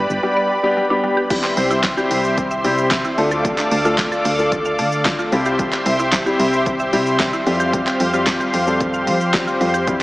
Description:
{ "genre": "dance-pop", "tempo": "112 BPM", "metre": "4/4", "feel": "straight", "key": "C major", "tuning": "A4 = 440 Hz", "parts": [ { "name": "lush unison pad", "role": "sustained chords", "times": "0.0-10.0 s", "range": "G4 to D6", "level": "-20 LUFS", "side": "equal", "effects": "chorus, sidechain pumping" }, { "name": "mallet-like synth pluck", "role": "arpeggios", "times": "0.0-10.0 s", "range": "G3 to F5", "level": "-26 LUFS", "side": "right 1 dB", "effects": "chorus, sidechain pumping, tape echo" }, { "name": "solid FM bass", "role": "bass", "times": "0.0-10.0 s", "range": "G1 to F3", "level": "-24 LUFS", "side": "equal", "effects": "sidechain pumping" }, { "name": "deep house drum kit", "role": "drums", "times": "0.1-10.0 s", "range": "crash cymbal, handclaps, hi-hat, kick drum, shaker, snare drum", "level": "-23 LUFS", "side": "equal", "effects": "none" }, { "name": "warm concert grand piano", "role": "accompaniment", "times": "0.2-10.0 s", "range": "G3 to A4", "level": "-21 LUFS", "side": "left 1 dB", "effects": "sidechain pumping" } ], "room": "wet cathedral reverb, RT60 4.5 s", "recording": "dreamy mix soaked in reverb, small speaker sound", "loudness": "-15 LUFS", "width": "side -18 dB against mid", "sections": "0.0-1.3 A section; 1.3-10.0 B section", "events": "none", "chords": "0.0 G; 1.3 C; 3.2 Dm; 5.3 C; 7.5 Fsus2" }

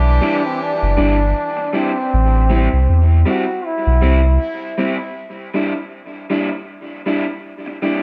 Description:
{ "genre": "reggae", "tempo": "79 BPM", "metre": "4/4", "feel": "swing 56% on 16ths", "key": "E minor", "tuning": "A4 = 440 Hz", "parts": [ { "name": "bright trombone", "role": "melody", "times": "0.0-4.4 s", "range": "C4 to F#4", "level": "-24 LUFS", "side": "equal", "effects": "dub echo" }, { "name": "clear horn section", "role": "second line", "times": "0.0-1.7 s", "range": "E3 to G4", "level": "-30 LUFS", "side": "equal", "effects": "dub echo" }, { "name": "warm sub bass", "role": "bass", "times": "0.0-4.4 s", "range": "F#1 to E2", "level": "-15 LUFS", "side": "equal", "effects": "none" }, { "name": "electric guitar through a small old amp", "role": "accompaniment", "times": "0.2-8.0 s", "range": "G3 to E4", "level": "-23 LUFS", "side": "equal", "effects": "harmonic tremolo, dub echo" } ], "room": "light reverb, small room ambience", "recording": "echo-heavy mix", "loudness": "-17 LUFS", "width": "mono", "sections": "0.0-5.2 A section; 5.2-8.0 B section", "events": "break 0.0-5.2", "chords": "0.0 Em7; 2.1 Am7; 5.2 Em7" }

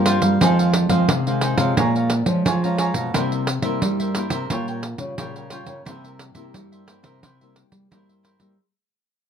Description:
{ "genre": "samba and choro", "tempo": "88 BPM", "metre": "4/4", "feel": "straight", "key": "unclear", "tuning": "A4 = 440 Hz", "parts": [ { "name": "cavaquinho", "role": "accompaniment", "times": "0.0-8.6 s", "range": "Eb4 to Bb5", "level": "-26 LUFS", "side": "right 2 dB", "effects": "none" }, { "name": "nylon-string guitar", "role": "accompaniment", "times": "0.0-8.6 s", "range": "F2 to F4", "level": "-26 LUFS", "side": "left 6 dB", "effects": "none" }, { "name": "nylon-string guitar", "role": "bass", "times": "0.0-8.6 s", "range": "Bb2 to G3", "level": "-22 LUFS", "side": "right 2 dB", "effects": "none" }, { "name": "pandeiro", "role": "percussion", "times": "0.1-8.6 s", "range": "none", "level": "-24 LUFS", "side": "right 3 dB", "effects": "none" } ], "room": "light reverb", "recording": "dark, warm production", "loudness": "-18 LUFS", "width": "side -8 dB against mid", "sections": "0.0-8.6 A section", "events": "fade-out 0.0-8.6", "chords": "0.4 Fm7; 1.8 Bbm7; 3.1 C7; 4.5 Gm7b5/Bb; 5.9 C7" }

